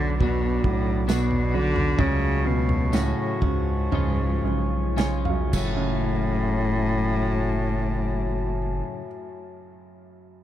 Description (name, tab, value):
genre	pop ballad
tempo	51-70 BPM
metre	4/4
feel	straight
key	F# minor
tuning	A4 = 439 Hz
part	rich cello	melody	0.0-8.8 s	G#2 to D3	-26 LUFS	left 1 dB	none
part	felt-muted upright piano	accompaniment	0.0-10.4 s	F#2 to G#5	-31 LUFS	right 11 dB	none
part	glass harmonica	sustained chords	0.0-8.8 s	E#4 to D6	-33 LUFS	left 4 dB	none
part	twelve-string electric guitar	arpeggios	0.0-9.1 s	F#2 to F#4	-33 LUFS	left 10 dB	none
part	saturated sub bass	bass	0.0-8.8 s	F#1 to C#2	-26 LUFS	equal	none
part	modern studio drum kit	drums	0.2-5.8 s	crash cymbal, kick drum, snare drum, toms	-28 LUFS	equal	none
part	tambourine	percussion	1.1-6.7 s	none	-41 LUFS	right 11 dB	none
room	little or no reverb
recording	dry, close 1970s-style studio recording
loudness	-21 LUFS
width	side -12 dB against mid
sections	0.0-6.1 A section; 6.1-10.4 B section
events	slowing down 0.0-6.1; felt piano fill 4.4-6.1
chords	0.0 Bm; 2.0 F#m/C#; 3.9 C#; 5.5 F#m7